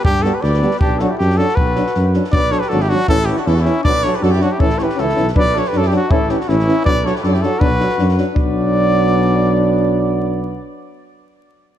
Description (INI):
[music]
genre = balkan folk, Balkan brass band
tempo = 159 BPM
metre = 2/4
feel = swing 54% on 16ths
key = B minor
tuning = A4 = 439 Hz
[part]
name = mellow trumpet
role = melody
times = 0.0-10.6 s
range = E4 to D5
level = -19 LUFS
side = equal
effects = diffuse ambient delay
[part]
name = mellow flugelhorn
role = second line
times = 0.0-10.6 s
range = B3 to B4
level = -24 LUFS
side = left 3 dB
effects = none
[part]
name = compact cocktail drum kit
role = percussion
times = 0.0-8.5 s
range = kick drum, snare drum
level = -20 LUFS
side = equal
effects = none
[part]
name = dark tuba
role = bass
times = 0.1-10.6 s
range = G#1 to G2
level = -19 LUFS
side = equal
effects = none
[part]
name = mellow euphonium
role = accompaniment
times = 0.2-10.6 s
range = B3 to D4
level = -22 LUFS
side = left 4 dB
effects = none
[part]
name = warm euphonium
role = accompaniment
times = 0.2-10.6 s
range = E3 to G3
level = -22 LUFS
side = right 5 dB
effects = none
[sound]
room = moderate plate reverb, RT60 2.1 s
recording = dreamy mix soaked in reverb, vinyl crackle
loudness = -13 LUFS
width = side -10 dB against mid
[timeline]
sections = 0.0-2.3 A section; 2.3-8.4 B section; 8.4-9.9 C section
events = none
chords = 0.0 G; 0.8 Bm; 3.1 A; 3.9 Bm; 4.6 A; 5.4 Bm; 6.1 A; 6.9 Bm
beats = | 0.05 0.43 | 0.81 1.20 | 1.58 1.96 | 2.34 2.72 | 3.10 3.47 | 3.85 4.23 | 4.61 4.98 | 5.36 5.74 | 6.11 6.49 | 6.86 7.24 | 7.61 7.99 | 8.36 8.74 | 9.11 9.49